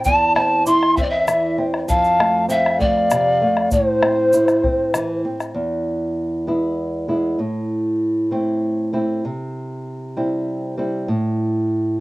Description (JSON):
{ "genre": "andean folk, Andean ensemble", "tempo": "65 BPM (dotted quarters)", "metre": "6/8", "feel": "straight", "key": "A minor", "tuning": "A4 = 440 Hz", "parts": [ { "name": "mellow polished pan flute", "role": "melody", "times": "0.0-5.2 s", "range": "C5 to C6", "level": "-17 LUFS", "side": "equal", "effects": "cassette tape" }, { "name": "breathy large quena", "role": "second line", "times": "0.0-5.2 s", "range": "C5 to D6", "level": "-22 LUFS", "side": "left 2 dB", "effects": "cassette tape" }, { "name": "nylon-string guitar", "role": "accompaniment", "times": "0.0-12.0 s", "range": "E2 to E4", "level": "-20 LUFS", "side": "right 1 dB", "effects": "cassette tape" }, { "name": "egg shaker", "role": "percussion", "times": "0.0-5.5 s", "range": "none", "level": "-35 LUFS", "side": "right 2 dB", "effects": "none" }, { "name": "bombo", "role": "percussion", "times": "0.1-5.5 s", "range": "none", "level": "-23 LUFS", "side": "left 1 dB", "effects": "none" } ], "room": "moderate studio reverb, RT60 0.6 s", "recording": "home recording on cassette", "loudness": "-17 LUFS", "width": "side -19 dB against mid", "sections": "0.0-5.6 A section; 5.6-12.0 B section", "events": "none", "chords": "0.0 Am; 1.9 F; 3.7 Am; 5.6 E; 7.4 Am; 9.2 C; 11.1 N.C." }